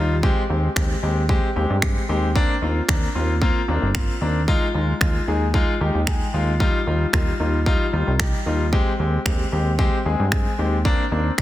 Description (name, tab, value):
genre	dance-pop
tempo	113 BPM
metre	4/4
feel	straight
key	unclear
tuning	A4 = 438 Hz
part	warm concert grand piano	accompaniment	0.0-11.4 s	G3 to G5	-23 LUFS	left 2 dB	sidechain pumping
part	plucky analog bass	bass	0.0-11.4 s	G1 to G2	-22 LUFS	equal	sidechain pumping
part	pop drum kit	drums	0.2-11.4 s	finger snaps, kick drum	-22 LUFS	equal	soft clipping on snare
room	light reverb, digital ambience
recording	dense, heavily limited modern master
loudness	-18 LUFS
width	side -14 dB against mid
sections	0.0-11.4 A section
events	grand piano fill 5.8-6.6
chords	0.2 Abmaj7/Eb; 2.4 Bbadd9/Eb; 4.5 Fm7/Eb; 6.6 Ebadd9; 8.7 Abmaj7/Eb; 10.9 Bbadd9/Eb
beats	| 0.23 0.76 1.29 1.82 | 2.36 2.89 3.42 3.95 | 4.48 5.01 5.54 6.07 | 6.60 7.13 7.67 8.20 | 8.73 9.26 9.79 10.32 | 10.85 11.38